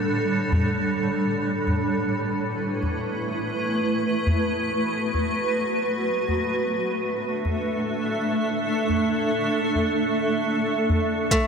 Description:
organic downtempo; 104 BPM; 4/4; swing 58% on 16ths; A4 = 441 Hz
granular cloud pad; sustained chords; 0.0-11.5 s; A2 to E5; -22 LUFS; right 1 dB; built-in reverb, sidechain pumping, shimmer reverb
udu; percussion; 0.5-11.0 s; -26 LUFS; left 1 dB
nylon-string guitar; arpeggios; 11.3-11.5 s; A3; -20 LUFS; equal
electronic hi-hat and shaker; drums; 11.3-11.4 s; -26 LUFS; right 3 dB
electronic kick drum; drums; 11.3-11.4 s; -23 LUFS; equal
wet echo chamber reverb, RT60 2.3 s; -22 LUFS; side -6 dB against mid
0.0-11.3 A section
0.0 G5/A; 2.1 A5; 6.7 D5/A

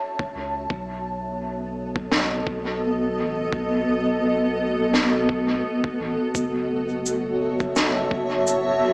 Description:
ambient dub; 85 BPM; 4/4; swing 56% on 16ths; A4 = 441 Hz
granular cloud pad; sustained chords; 0.0-8.9 s; B3 to A5; -25 LUFS; equal; built-in reverb
electronic kick drum; drums; 0.2-8.3 s; -32 LUFS; equal; overdrive
warm sub bass; bass; 0.4-8.9 s; E1 to C#2; -38 LUFS; equal
snare drum and cabasa; drums; 2.1-8.6 s; -28 LUFS; equal; dub echo
moderate spring reverb, RT60 2.5 s; small speaker sound; -24 LUFS; mono
0.0-8.9 A section
0.0 F#m7; 0.7 B7; 6.4 F#m7

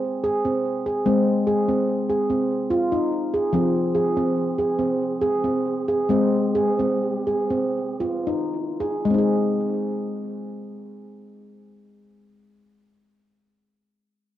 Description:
world meditative; 54-73 BPM; 3/4; straight; Ab major pentatonic; A4 = 438 Hz
handpan; solo; 0.0-12.9 s; F3 to Ab4; -20 LUFS; equal; cassette tape, analog delay
wet spring reverb, RT60 1.1 s, small room ambience; home recording on cassette; -20 LUFS; side -12 dB against mid
0.0-9.1 A section; 9.1-12.4 B section
slowing down 3.5-9.1
0.0 Ab; 3.5 Fm; 6.1 Ab

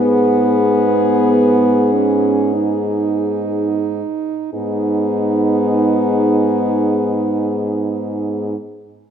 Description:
classical, lyrical piece for horn quartet; free time; G# minor; A4 = 440 Hz
warm French horn; melody; 0.0-8.6 s; G#4; -20 LUFS; left 8 dB
mellow French horn; second line; 0.0-8.6 s; B3 to D#4; -19 LUFS; right 7 dB
mellow French horn; accompaniment; 0.0-8.5 s; B3; -20 LUFS; left 1 dB
mellow French horn; bass; 0.0-8.6 s; G#2; -20 LUFS; right 2 dB
wet recital hall reverb, RT60 1.6 s; minimal, uncompressed stereo recording; -14 LUFS; side -8 dB against mid
0.0-4.5 A section; 4.5-9.1 B section
slowing down 0.0-4.5
0.0 G#m

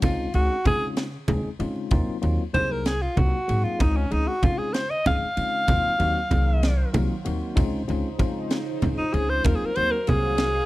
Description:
electric jazz fusion; 64 BPM (dotted quarters); 6/8; straight; Eb dorian; A4 = 443 Hz
clear alto saxophone; melody; 0.0-10.7 s; Db4 to F5; -25 LUFS; equal; slapback echo
tine electric piano; accompaniment; 0.0-10.5 s; Gb3 to Ab4; -30 LUFS; left 3 dB; medium stereo tremolo
upright bass; bass; 0.0-10.6 s; C2 to Db3; -26 LUFS; equal
crisp fusion drum kit; drums; 0.0-10.5 s; kick drum, ride cymbal, snare drum; -26 LUFS; equal
congas; percussion; 0.0-10.2 s; -26 LUFS; right 2 dB
phased analog pad; sustained chords; 6.2-10.7 s; Db3 to F5; -34 LUFS; right 2 dB; phaser, chorus
small room reverb; dry, close 1970s-style studio recording; -21 LUFS; side -18 dB against mid
0.0-10.7 A section
alto saxophone solo 0.0-10.7
0.0 Dbmaj9; 1.9 Ebm69; 3.8 Dbmaj9; 5.7 Ebm69; 7.6 Dbmaj9; 9.4 Ebm69

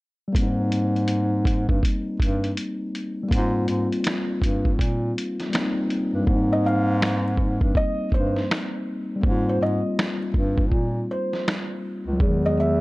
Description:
lo-fi hip hop; 81 BPM; 4/4; swing 63% on 16ths; Ab major; A4 = 439 Hz
mellow tine electric piano; accompaniment; 0.3-12.8 s; D#3 to F4; -25 LUFS; left 1 dB; cassette tape, low-pass filter
lo-fi sampler-style drum kit; drums; 0.3-12.4 s; finger snaps, hi-hat, kick drum, snare drum; -24 LUFS; equal; vintage 12-bit sampler grit
mellow bass clarinet; bass; 0.4-12.8 s; Db2 to Bb2; -25 LUFS; equal
felt-muted upright piano; melody; 6.5-12.8 s; C5 to F5; -27 LUFS; right 1 dB
little or no reverb; dry, gritty hardware recording; -21 LUFS; side -21 dB against mid
0.3-6.3 A section; 6.3-12.8 B section
filter sweep on tine electric piano 0.3-6.3; hi-hats muted 6.3-12.8
0.3 Abmaj9; 12.2 Emaj9

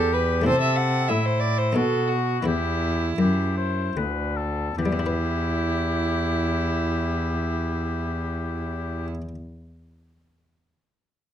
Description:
classical, baroque-style sonata movement with continuo; 70-96 BPM; 3/4; straight; E minor; A4 = 440 Hz
warm oboe; melody; 0.0-9.1 s; E4 to C5; -29 LUFS; left 10 dB
warm violin; second line; 0.0-9.1 s; E4 to F#5; -27 LUFS; right 5 dB
buff-stop harpsichord; accompaniment; 0.0-9.3 s; D2 to B4; -26 LUFS; left 2 dB
rich cello; bass; 0.0-9.1 s; D2 to C3; -26 LUFS; equal
light reverb; close, detailed microphones; -22 LUFS; side -10 dB against mid
0.0-4.8 A section; 4.8-9.8 B section
slowing down 0.0-4.8
0.5 Am/C; 1.8 B7; 2.5 Em

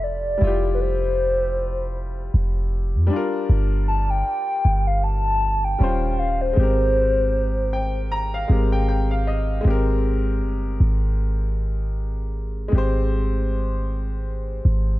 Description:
contemporary R&B; 78 BPM; 4/4; swing 58% on 16ths; A4 = 440 Hz
hollow clarinet-like synth lead; melody; 0.0-8.9 s; B4 to A5; -23 LUFS; left 1 dB; chorus, digital delay
warm concert grand piano; accompaniment; 0.0-15.0 s; G3 to Bb5; -27 LUFS; left 3 dB
warm 808-style bass; bass; 0.0-15.0 s; Eb1 to F2; -21 LUFS; equal
light reverb, small room ambience; dark, warm production; -19 LUFS; side -17 dB against mid
0.0-9.6 A section; 9.6-15.0 B section
grand piano fill 7.3-9.6
0.0 Fmaj9; 3.1 Gm7; 5.8 Eb13; 6.6 Abmaj9

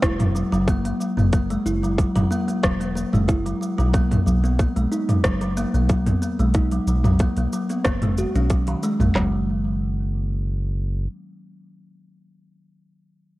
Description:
organic downtempo; 92 BPM; 4/4; swing 53% on 16ths; A4 = 443 Hz
kalimba; arpeggios; 0.0-9.5 s; D#3 to F#4; -24 LUFS; equal; analog delay
round analog bass; bass; 0.0-11.1 s; E1 to B1; -23 LUFS; equal; tube saturation, sidechain pumping
organic electronic drum kit; drums; 0.0-9.3 s; handclaps, kick drum, snare drum, toms; -21 LUFS; equal; overdrive, cassette tape
organic electronic drum kit; drums; 0.0-9.1 s; hi-hat, rim click, shaker, toms; -24 LUFS; equal; overdrive, cassette tape
light reverb; home recording on cassette; -19 LUFS; side -18 dB against mid
0.0-9.2 A section; 9.2-11.8 B section
0.0 F#; 3.9 B5; 9.2 N.C.

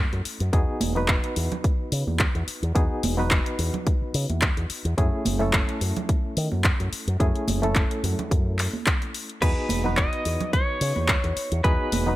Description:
nu-disco, nu disco; 108 BPM; 4/4; swing 54% on 16ths; E major; A4 = 440 Hz
barky reed electric piano; accompaniment; 0.0-12.2 s; A3 to B4; -30 LUFS; equal; overdrive, fast tremolo, tape echo
fingered electric bass with an envelope filter; bass; 0.0-12.2 s; E1 to D#3; -26 LUFS; equal
house drum kit; drums; 0.1-12.0 s; crash cymbal, handclaps, hi-hat; -28 LUFS; left 1 dB
electronic kick drum; drums; 0.5-11.8 s; -23 LUFS; equal
congas; percussion; 0.8-12.2 s; -31 LUFS; right 4 dB
direct-recorded clean electric guitar; melody; 9.4-12.2 s; B4 to D#5; -27 LUFS; equal; dub echo
digital ambience; -22 LUFS; side -16 dB against mid
0.0-12.2 A section
0.0 F#m7; 0.5 Emaj7; 5.0 F#m7; 9.4 Emaj7

